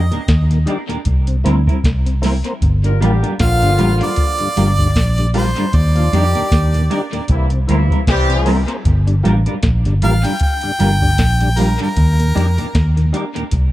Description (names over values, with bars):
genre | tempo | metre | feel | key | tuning
roots reggae | 77 BPM | 4/4 | swing 57% on 16ths | G minor | A4 = 440 Hz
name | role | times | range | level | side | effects
bright harmonica | melody | 0.0-12.9 s | Bb4 to G5 | -22 LUFS | equal | tape echo
clean electric guitar | accompaniment | 0.0-13.4 s | G3 to Bb4 | -22 LUFS | right 1 dB | wide subtle chorus, tape echo
vintage muted fingered electric bass | bass | 0.0-13.7 s | G1 to F2 | -14 LUFS | equal | none
tonewheel organ | accompaniment | 0.1-13.4 s | Eb2 to D4 | -24 LUFS | left 2 dB | chorus vibrato
soft vintage rhythm box | drums | 0.1-13.7 s | hi-hat, kick drum, snare drum | -18 LUFS | equal | dub echo
warm horn section | second line | 2.8-8.7 s | C3 to Bb4 | -22 LUFS | left 1 dB | tape echo
room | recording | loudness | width
little or no reverb | echo-heavy mix | -13 LUFS | side -15 dB against mid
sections
0.0-13.7 A section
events
none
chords
0.0 Ebmaj7; 1.1 C7; 2.6 Gm7; 5.7 Ebmaj7; 7.3 C7; 8.9 Gm7; 12.0 Ebmaj7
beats
0.28 1.06 1.84 | 2.62 3.40 4.18 4.96 | 5.74 6.51 7.29 8.07 | 8.85 9.63 10.41 11.19 | 11.97 12.75 13.53